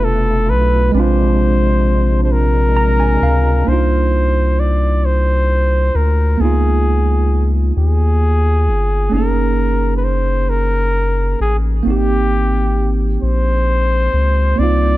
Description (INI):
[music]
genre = R&B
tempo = 44 BPM (dotted quarters)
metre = 6/8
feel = straight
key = unclear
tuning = A4 = 440 Hz
[part]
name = warm flugelhorn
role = melody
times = 0.0-15.0 s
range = G4 to D5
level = -19 LUFS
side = equal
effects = none
[part]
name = tine electric piano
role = accompaniment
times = 0.0-15.0 s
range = Ab3 to Bb5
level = -20 LUFS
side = right 5 dB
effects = none
[part]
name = percussive tonewheel organ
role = sustained chords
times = 0.0-3.6 s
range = B2 to F4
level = -23 LUFS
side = left 1 dB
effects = overdrive, chorus vibrato, slow rotary speaker
[part]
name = round analog bass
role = bass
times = 0.0-15.0 s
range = F1 to Eb2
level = -15 LUFS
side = equal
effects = none
[sound]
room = little or no reverb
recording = none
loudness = -13 LUFS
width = side -16 dB against mid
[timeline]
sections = 0.0-3.7 A section; 3.7-15.0 B section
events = tine electric piano fill 2.3-3.7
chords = 0.0 G9 (rootless); 0.9 Bb9; 3.7 Cm11; 6.4 Db13; 9.1 Gb69; 11.8 Abmaj9